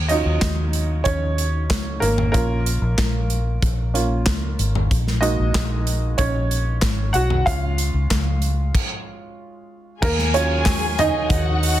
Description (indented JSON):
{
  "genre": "piano-driven pop",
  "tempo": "94 BPM",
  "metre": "4/4",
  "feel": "straight",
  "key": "Eb minor",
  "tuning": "A4 = 439 Hz",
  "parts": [
    { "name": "vintage muted fingered electric bass", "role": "bass", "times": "0.0-11.8 s", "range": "Ab1 to Eb2", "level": "-21 LUFS", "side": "equal", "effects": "none" },
    { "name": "clear upright piano", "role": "accompaniment", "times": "0.1-11.8 s", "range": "Gb3 to Gb5", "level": "-24 LUFS", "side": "right 3 dB", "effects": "plate reverb" },
    { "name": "modern studio drum kit", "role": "drums", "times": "0.1-11.8 s", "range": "crash cymbal, handclaps, hi-hat, kick drum, snare drum, toms", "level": "-23 LUFS", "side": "equal", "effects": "none" },
    { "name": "group handclap", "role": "percussion", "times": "5.6-10.8 s", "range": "none", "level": "-34 LUFS", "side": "left 7 dB", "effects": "none" },
    { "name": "dark studio violin section", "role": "second line", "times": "10.0-11.8 s", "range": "Gb4 to Ab5", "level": "-25 LUFS", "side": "left 4 dB", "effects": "plate reverb" }
  ],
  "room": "light reverb",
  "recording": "dense, heavily limited modern master",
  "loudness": "-18 LUFS",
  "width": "side -13 dB against mid",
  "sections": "0.0-10.0 A section; 10.0-11.8 B section",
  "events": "upright piano solo 0.0-10.0, 10.0-11.8; stop 8.7-10.0",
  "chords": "0.0 Ebm7; 2.3 Bbm; 4.9 Gbadd9/Bb; 7.5 Db; 10.0 Ebm7"
}